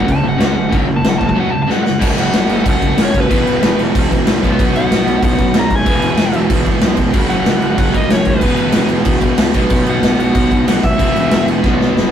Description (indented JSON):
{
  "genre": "punk rock",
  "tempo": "187 BPM",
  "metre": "4/4",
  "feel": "straight",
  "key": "unclear",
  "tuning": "A4 = 440 Hz",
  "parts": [
    { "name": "biting lead guitar", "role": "melody", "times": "0.0-11.5 s", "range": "B4 to A#5", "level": "-20 LUFS", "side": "left 1 dB", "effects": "overdrive" },
    { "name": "distorted electric guitar", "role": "riff", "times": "0.0-12.1 s", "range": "E2 to B3", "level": "-17 LUFS", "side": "equal", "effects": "distortion" },
    { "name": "fuzz picked electric bass", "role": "bass", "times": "0.0-12.1 s", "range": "E1 to D#2", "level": "-19 LUFS", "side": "equal", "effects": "overdrive" },
    { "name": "big rock drum kit", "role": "drums", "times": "0.0-12.0 s", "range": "crash cymbal, kick drum, snare drum", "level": "-14 LUFS", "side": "equal", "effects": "none" }
  ],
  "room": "moderate booth ambience, RT60 0.3 s",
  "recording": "rough rehearsal-room recording, warm saturation",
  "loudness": "-11 LUFS",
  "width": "side -9 dB against mid",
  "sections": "0.0-2.0 A section; 2.0-12.1 B section",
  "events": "lead electric guitar solo 0.0-2.0; drum fill 1.7-2.0, 11.6-12.1",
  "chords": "0.0 F#5; 3.3 E5; 4.4 B5; 5.9 E; 7.2 F#5; 8.4 E5; 9.6 B5; 11.0 E5"
}